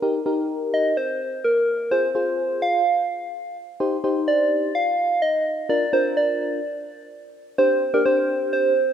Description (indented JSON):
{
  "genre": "pop",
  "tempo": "127 BPM",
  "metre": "4/4",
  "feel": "straight",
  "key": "C minor",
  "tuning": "A4 = 441 Hz",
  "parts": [
    { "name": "mellow FM electric piano", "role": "accompaniment", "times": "0.0-8.7 s", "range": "D4 to D5", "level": "-25 LUFS", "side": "left 1 dB", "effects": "chorus" },
    { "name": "soft struck synth lead", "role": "melody", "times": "0.7-8.9 s", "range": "Bb4 to F5", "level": "-20 LUFS", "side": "right 1 dB", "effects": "chorus, tape echo" }
  ],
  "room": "moderate lush hall reverb, RT60 2.4 s",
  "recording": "rough home demo mix",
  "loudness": "-19 LUFS",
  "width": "side -8 dB against mid",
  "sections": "0.0-7.6 A section; 7.6-8.9 B section",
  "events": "none",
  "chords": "0.0 Eb; 1.9 Fm; 3.8 Cmadd9; 5.7 Bb; 7.6 Csus2"
}